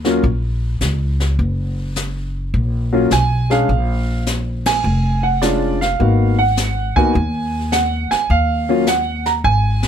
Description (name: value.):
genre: jazz piano trio.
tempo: 104 BPM.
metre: 4/4.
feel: swing 68% on 8ths.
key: Eb minor.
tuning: A4 = 440 Hz.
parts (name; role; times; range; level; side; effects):
warm baby grand piano; melody; 0.0-9.9 s; Gb3 to Bb5; -17 LUFS; right 1 dB; none.
upright bass; bass; 0.0-9.9 s; F1 to Eb2; -18 LUFS; equal; none.
jazz brush drum kit; drums; 0.0-9.9 s; brushed snare drum, hi-hat, kick drum, ride cymbal, snare drum; -24 LUFS; left 2 dB; none.
room: light reverb.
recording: none.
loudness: -15 LUFS.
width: side -8 dB against mid.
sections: 0.0-9.9 A section.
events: band accent 4.6.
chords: 0.0 Ebm7 (rootless); 3.7 Bb7; 6.0 Abm7; 8.3 Ebm.